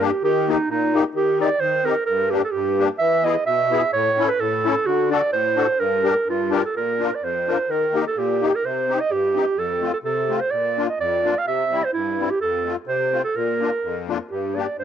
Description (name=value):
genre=alpine folk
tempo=128 BPM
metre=2/4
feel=swing 55% on 8ths, rubato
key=G minor, Bb major from 6.7 s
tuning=A4 = 440 Hz
part: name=mellow clarinet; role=melody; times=0.0-14.8 s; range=Eb4 to F5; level=-20 LUFS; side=right 4 dB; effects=cassette tape
part: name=musette accordion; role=accompaniment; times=0.0-14.8 s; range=F2 to Bb4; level=-24 LUFS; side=left 9 dB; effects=cassette tape
room=light reverb, small room ambience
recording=home recording on cassette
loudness=-19 LUFS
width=side -8 dB against mid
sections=0.0-6.7 A section; 6.7-14.3 B section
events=none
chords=0.2 Eb; 1.1 Cm/Eb; 2.1 Gm; 3.0 E; 3.9 A; 4.9 D7; 5.8 Gm; 6.7 Bb; 7.7 Eb; 8.6 Cm; 9.6 F; 10.5 Bb; 11.5 C; 12.4 F; 13.3 Bb; 14.3 Gm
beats=| 0.22 0.68 | 1.14 1.60 | 2.06 2.53 | 3.00 3.47 | 3.94 4.40 | 4.86 5.33 | 5.79 6.27 | 6.75 7.22 | 7.70 8.17 | 8.63 9.10 | 9.57 10.04 | 10.51 10.99 | 11.46 11.94 | 12.40 12.87 | 13.34 13.81 | 14.29 14.77